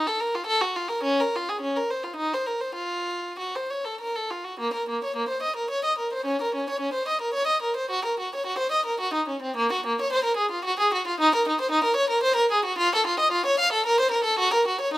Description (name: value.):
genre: classical, baroque-style suite movement for unaccompanied violin.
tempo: 98-115 BPM.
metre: 3/4.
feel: rubato.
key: Bb minor.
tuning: A4 = 440 Hz.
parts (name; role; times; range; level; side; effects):
warm violin; solo; 0.0-15.0 s; Bb3 to F5; -22 LUFS; equal; none.
room: light reverb.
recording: close, detailed microphones.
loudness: -22 LUFS.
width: side -17 dB against mid.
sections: 0.0-4.6 A section; 4.6-15.0 B section.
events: none.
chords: none.